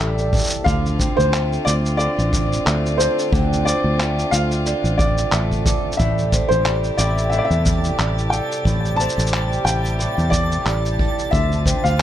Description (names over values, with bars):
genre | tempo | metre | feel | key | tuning
folktronica | 90 BPM | 4/4 | swing 56% on 16ths | D minor | A4 = 439 Hz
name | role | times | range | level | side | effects
felt-muted upright piano | melody | 0.0-12.0 s | C5 to A5 | -23 LUFS | left 1 dB | ping-pong delay, plate reverb
vibraphone with soft mallets | second line | 0.0-12.0 s | D5 to D6 | -27 LUFS | right 4 dB | vintage 12-bit sampler grit, ping-pong delay, plate reverb
muted string quartet | sustained chords | 0.0-12.0 s | C3 to A4 | -28 LUFS | left 2 dB | plate reverb
fingerpicked swing-style acoustic guitar | arpeggios | 0.0-12.0 s | A2 to A4 | -28 LUFS | equal | plate reverb
fingered electric bass | bass | 0.0-12.0 s | A1 to E2 | -21 LUFS | equal | none
electronic cabasa and handclaps | drums | 0.0-12.0 s | none | -25 LUFS | equal | none
kick drum | drums | 0.3-11.8 s | none | -22 LUFS | equal | none
twinkling granular texture | texture | 6.8-12.0 s | A5 to A6 | -33 LUFS | right 2 dB | built-in reverb, plate reverb
room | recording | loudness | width
moderate studio reverb, RT60 0.5 s | none | -16 LUFS | side -11 dB against mid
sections
0.0-12.0 A section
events
none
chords
0.0 Am7; 0.7 Dm7; 6.0 Am7; 11.3 Dm7